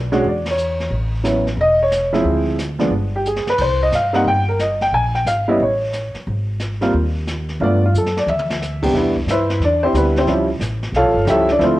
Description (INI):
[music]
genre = jazz piano trio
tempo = 179 BPM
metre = 4/4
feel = swing 64% on 8ths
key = unclear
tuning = A4 = 438 Hz
[part]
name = upright bass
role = bass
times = 0.0-11.8 s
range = E1 to G2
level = -21 LUFS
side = equal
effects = none
[part]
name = clear upright piano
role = melody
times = 0.1-11.8 s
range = C3 to Ab5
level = -16 LUFS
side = equal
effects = cassette tape
[part]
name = jazz brush drum kit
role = drums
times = 0.1-11.8 s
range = brushed snare drum, crash cymbal, hi-hat, kick drum, ride cymbal, snare drum, toms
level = -29 LUFS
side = equal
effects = cassette tape
[sound]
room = light reverb, studio reverb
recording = home recording on cassette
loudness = -16 LUFS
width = side -16 dB against mid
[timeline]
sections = 0.0-8.9 A section; 8.9-11.8 B section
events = band accent 0.4; drum fill 3.3-3.6, 7.9-8.6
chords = 0.2 Dbm/Fb; 0.9 A; 2.2 Dm7b5; 2.9 N.C.; 3.6 Cm; 4.9 Bb7(no3); 5.6 A; 6.3 Ab5; 7.6 G7; 8.9 Cmaj7; 10.3 A7b13